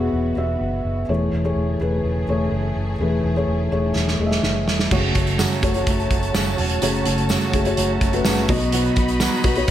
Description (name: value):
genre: piano-driven pop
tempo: 126 BPM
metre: 4/4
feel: straight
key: unclear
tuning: A4 = 439 Hz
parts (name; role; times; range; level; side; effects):
- felt-muted upright piano; accompaniment; 0.0-9.7 s; B2 to F#5; -22 LUFS; left 2 dB; none
- warm studio string section; sustained chords; 0.0-9.7 s; C#3 to B5; -30 LUFS; equal; none
- vintage muted fingered electric bass; bass; 0.0-9.7 s; E1 to B1; -25 LUFS; equal; none
- loose indie drum kit; drums; 4.0-9.7 s; crash cymbal, hi-hat, kick drum, snare drum; -22 LUFS; right 1 dB; none
- fingerpicked steel-string acoustic guitar; riff; 4.9-9.7 s; F#2 to F#4; -25 LUFS; right 6 dB; slapback echo
- tambourine; percussion; 5.4-9.3 s; none; -34 LUFS; left 5 dB; none
room: wet recital hall reverb, RT60 1.6 s, small room ambience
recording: big arena sound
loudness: -18 LUFS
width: side -11 dB against mid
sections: 0.0-4.9 A section; 4.9-9.7 B section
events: drum fill 4.0-4.9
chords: 0.0 Esus2; 1.1 Amaj7/E; 4.9 F#m; 8.5 B